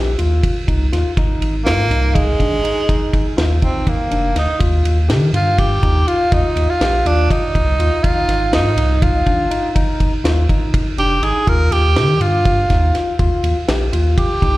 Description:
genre	progressive instrumental, band music in an uneven meter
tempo	244 BPM (eighths)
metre	7/8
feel	straight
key	Eb major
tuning	A4 = 441 Hz
part	overdriven tine electric piano	arpeggios	0.0-14.6 s	D4 to G4	-23 LUFS	left 2 dB	slapback echo
part	warm sub bass	bass	0.0-14.6 s	F1 to Eb3	-17 LUFS	equal	none
part	deep reggae drum kit	drums	0.2-14.5 s	kick drum, ride cymbal, snare drum	-19 LUFS	equal	none
part	breathy tenor saxophone	melody	1.7-14.6 s	Ab3 to Bb4	-18 LUFS	right 1 dB	slapback echo
room	studio reverb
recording	live gig heard through the venue's PA, recital hall reverb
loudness	-13 LUFS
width	side -18 dB against mid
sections	0.0-14.6 A section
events	tenor saxophone solo 0.0-14.6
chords	0.0 Ebsus2; 1.2 Abadd9; 4.6 Ebadd9; 8.0 Ab; 11.5 Ebadd9

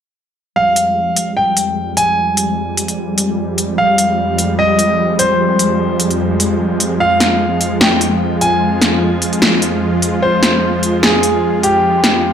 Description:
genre	heavy wobble dubstep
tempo	149 BPM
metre	4/4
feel	swing 54% on 16ths, half-time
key	F minor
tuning	A4 = 440 Hz
part	bright concert grand piano	melody	0.6-12.3 s	G4 to Ab5	-16 LUFS	equal	tape echo
part	supersaw chords	sustained chords	0.6-12.3 s	F2 to F4	-16 LUFS	equal	low-pass filter
part	big-room dance drum kit	drums	0.8-12.1 s	hi-hat, snare drum	-15 LUFS	equal	none
room	moderate digital room reverb, RT60 1.2 s, digital ambience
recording	dark, warm production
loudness	-12 LUFS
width	side -8 dB against mid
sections	0.6-12.3 A section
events	filter sweep on supersaw synth 0.6-12.3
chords	0.6 Fmadd9

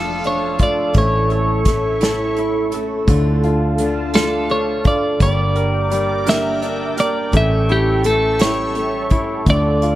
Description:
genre	six-eight pop ballad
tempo	56 BPM (dotted quarters)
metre	6/8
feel	straight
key	unclear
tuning	A4 = 436 Hz
part	twelve-string electric guitar	melody	0.0-10.0 s	G4 to E5	-20 LUFS	equal	spring reverb
part	clear concert grand piano	accompaniment	0.0-10.0 s	D3 to Bb4	-22 LUFS	left 3 dB	none
part	sweeping resonant pad	sustained chords	0.0-10.0 s	D4 to D6	-25 LUFS	equal	chorus
part	picked steel-string acoustic guitar	arpeggios	0.0-10.0 s	G2 to G4	-25 LUFS	right 6 dB	tape echo
part	vintage muted fingered electric bass	bass	0.0-10.0 s	F1 to D2	-20 LUFS	equal	none
part	unplugged drum kit	drums	0.2-10.0 s	hi-hat, kick drum, snare drum	-18 LUFS	equal	none
room	light reverb, small room ambience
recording	dark, warm production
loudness	-15 LUFS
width	side -14 dB against mid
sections	0.0-10.0 A section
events	none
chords	0.0 Dm/F; 0.9 A; 3.1 Dm; 5.2 Gm; 7.3 A7

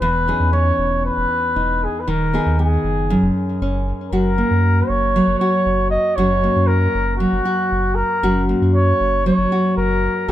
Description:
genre	folktronica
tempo	117 BPM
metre	4/4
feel	straight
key	unclear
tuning	A4 = 442 Hz
part	mellow flugelhorn	melody	0.0-10.3 s	F#4 to D#5	-20 LUFS	equal	plate reverb, ping-pong delay
part	nylon-string guitar	arpeggios	0.0-10.3 s	E2 to G#4	-20 LUFS	equal	ping-pong delay
part	warm sub bass	bass	0.0-10.3 s	D#1 to F#2	-20 LUFS	equal	none
room	moderate small room reverb, RT60 0.6 s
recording	none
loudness	-15 LUFS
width	side -12 dB against mid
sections	0.0-4.1 A section; 4.1-10.3 B section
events	filter sweep on nylon-string guitar 0.0-4.1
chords	0.0 C#madd9/E; 2.1 G#m/D#; 3.1 F#5; 4.1 F#

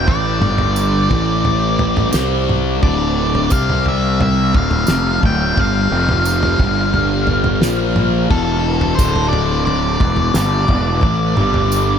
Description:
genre	psychedelic rock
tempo	88 BPM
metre	4/4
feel	straight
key	D minor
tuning	A4 = 440 Hz
part	octave-fuzz lead guitar	melody	0.0-12.0 s	A4 to G5	-20 LUFS	left 1 dB	distortion, diffuse ambient delay
part	fuzz guitar	riff	0.0-12.0 s	D2 to C4	-18 LUFS	equal	distortion, phaser
part	fuzz fingered electric bass	bass	0.0-12.0 s	D1 to C2	-19 LUFS	equal	overdrive
part	cloth-damped thuddy drum kit	drums	0.1-11.7 s	kick drum, snare drum, toms	-19 LUFS	right 1 dB	none
part	tambourine	percussion	0.8-11.9 s	none	-32 LUFS	right 10 dB	none
room	light reverb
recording	none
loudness	-13 LUFS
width	side -8 dB against mid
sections	0.0-12.0 A section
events	none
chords	0.4 G5; 1.1 A5; 2.1 C5; 2.8 D5; 3.5 C5; 4.5 Dm; 5.9 F5; 6.6 G5; 7.6 Bb5; 8.3 E5; 9.0 D5; 10.0 Em7; 11.4 G5

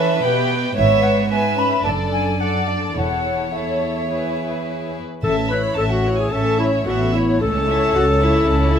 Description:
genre	quick classical-period movement for symphony orchestra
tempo	110 BPM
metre	4/4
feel	straight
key	A major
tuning	A4 = 440 Hz
part	warm chamber violin section	melody	0.0-8.8 s	B4 to G5	-28 LUFS	equal	none
part	small flute group	second line	0.0-5.0 s	D5 to B5	-23 LUFS	right 1 dB	none
part	warm chamber violin section	second line	0.0-8.8 s	B3 to B5	-26 LUFS	left 4 dB	none
part	dark chamber viola section	accompaniment	0.0-8.8 s	C#4 to D5	-24 LUFS	equal	none
part	warm chamber cello section	bass	0.0-8.8 s	E2 to F#4	-24 LUFS	right 2 dB	none
part	warm chamber double bass section	bass	0.8-8.8 s	E1 to C#2	-21 LUFS	right 2 dB	none
part	warm clarinet	second line	5.2-8.8 s	E4 to B4	-20 LUFS	left 2 dB	none
part	timpani	percussion	5.2-6.0 s	A2	-29 LUFS	left 2 dB	none
room	light reverb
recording	close, detailed microphones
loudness	-16 LUFS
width	side -8 dB against mid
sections	0.0-5.2 A section; 5.2-8.8 B section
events	none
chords	0.0 Em; 0.8 E/G#; 1.8 D/F#; 3.0 A/E; 5.2 A; 7.4 A/C#

